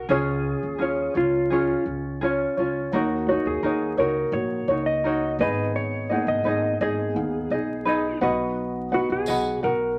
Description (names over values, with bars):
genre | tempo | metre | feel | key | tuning
acoustic pop | 85 BPM | 4/4 | straight | unclear | A4 = 441 Hz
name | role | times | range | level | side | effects
clean lap steel guitar | melody | 0.0-10.0 s | E#4 to D#5 | -28 LUFS | equal | none
tenor ukulele | accompaniment | 0.0-10.0 s | C#4 to F#5 | -27 LUFS | equal | none
upright bass | bass | 0.0-9.9 s | G#1 to D#2 | -35 LUFS | equal | none
felt-muted upright piano | accompaniment | 2.9-10.0 s | A#3 to F#5 | -32 LUFS | equal | none
tambourine | percussion | 9.3-9.4 s | none | -39 LUFS | equal | none
room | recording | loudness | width
moderate studio reverb, RT60 0.8 s | vinyl crackle | -24 LUFS | mono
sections
0.0-2.9 A section; 2.9-10.0 B section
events
none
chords
0.1 C#; 2.9 D#m7; 5.4 G#m; 8.2 B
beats
| 0.09 0.80 1.51 2.21 | 2.92 3.63 4.34 5.04 | 5.75 6.46 7.16 7.87 | 8.57 9.28 9.99